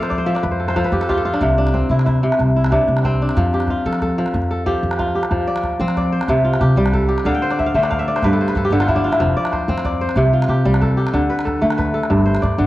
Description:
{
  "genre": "west african traditional, West African string and xylophone music",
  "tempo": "124 BPM (dotted quarters)",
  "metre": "12/8",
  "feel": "straight",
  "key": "F lydian",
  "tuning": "A4 = 441 Hz",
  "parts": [
    { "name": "kora", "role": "arpeggios", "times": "0.0-12.7 s", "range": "G2 to G5", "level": "-17 LUFS", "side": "equal", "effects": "cassette tape" },
    { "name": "upright bass", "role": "bass", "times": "0.0-12.7 s", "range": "F1 to F3", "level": "-19 LUFS", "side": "equal", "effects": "none" },
    { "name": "calabash", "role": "percussion", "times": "0.0-12.7 s", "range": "none", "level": "-26 LUFS", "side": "right 1 dB", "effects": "none" }
  ],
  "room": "small room ambience",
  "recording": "home recording on cassette",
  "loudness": "-15 LUFS",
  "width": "side -16 dB against mid",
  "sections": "0.0-5.3 A section; 5.3-12.7 B section",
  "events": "kora fill 0.0-1.4, 7.3-9.2",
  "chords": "0.0 F; 1.4 C; 3.4 F; 6.3 C5; 7.3 D5; 8.2 G5; 9.2 F5; 10.2 C5; 11.1 D5; 12.1 G",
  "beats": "0.44 0.93 | 1.42 1.91 2.39 2.88 | 3.37 3.86 4.34 4.83 | 5.32 5.80 6.29 6.78 | 7.26 7.75 8.23 8.71 | 9.20 9.68 10.17 10.65 | 11.14 11.62 12.11 12.59"
}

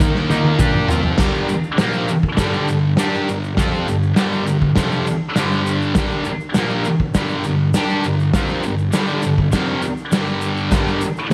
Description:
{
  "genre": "garage rock duo or trio",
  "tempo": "101 BPM",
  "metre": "4/4",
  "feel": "straight",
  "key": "G minor",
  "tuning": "A4 = 439 Hz",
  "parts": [
    { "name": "combo organ", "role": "sustained chords", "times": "0.0-11.3 s", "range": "Bb3 to C5", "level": "-30 LUFS", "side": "equal", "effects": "none" },
    { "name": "thick fuzz guitar", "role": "riff", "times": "0.0-11.3 s", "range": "F2 to G4", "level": "-21 LUFS", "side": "equal", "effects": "distortion" },
    { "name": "raw garage drum kit", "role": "drums", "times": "0.0-11.3 s", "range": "crash cymbal, hi-hat, kick drum, snare drum, toms", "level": "-22 LUFS", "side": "equal", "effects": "none" },
    { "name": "tube shaker", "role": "percussion", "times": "0.0-11.3 s", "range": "none", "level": "-41 LUFS", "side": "equal", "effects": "none" }
  ],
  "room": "light reverb, small room ambience",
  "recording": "none",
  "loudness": "-18 LUFS",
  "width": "mono",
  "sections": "0.0-1.2 A section; 1.2-11.3 B section",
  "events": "drum fill 0.0-1.2",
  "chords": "0.3 Bb5; 1.2 Gm",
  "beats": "0.00 0.59 | 1.19 1.79 2.38 2.98 | 3.58 4.17 4.77 5.37 | 5.96 6.56 7.15 7.75 | 8.34 8.94 9.53 10.13 | 10.72 11.31"
}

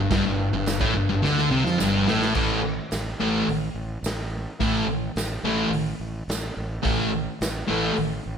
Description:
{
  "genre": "garage rock duo or trio",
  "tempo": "107 BPM",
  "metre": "4/4",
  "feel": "straight",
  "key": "A minor",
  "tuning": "A4 = 440 Hz",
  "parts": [
    { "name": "thick fuzz guitar", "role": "riff", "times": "0.0-7.9 s", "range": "G2 to A3", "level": "-23 LUFS", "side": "equal", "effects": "distortion" },
    { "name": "fuzz fingered electric bass", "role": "bass", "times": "0.0-8.4 s", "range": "G1 to F2", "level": "-31 LUFS", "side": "right 1 dB", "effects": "overdrive" },
    { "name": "raw garage drum kit", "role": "drums", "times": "0.1-8.1 s", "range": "crash cymbal, hi-hat, kick drum, snare drum", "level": "-30 LUFS", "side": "right 1 dB", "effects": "none" },
    { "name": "tambourine", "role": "percussion", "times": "0.7-7.5 s", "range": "none", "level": "-37 LUFS", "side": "right 8 dB", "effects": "none" }
  ],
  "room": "moderate recital hall reverb, RT60 1.6 s",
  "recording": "none",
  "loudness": "-22 LUFS",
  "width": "side -7 dB against mid",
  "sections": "0.0-2.4 A section; 2.4-8.4 B section",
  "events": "drum fill 1.2-2.4",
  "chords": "0.0 G5; 2.4 A5",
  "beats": "| 0.11 0.67 1.23 1.80 | 2.36 2.92 3.48 4.04 | 4.61 5.17 5.73 6.29 | 6.85 7.41 7.97"
}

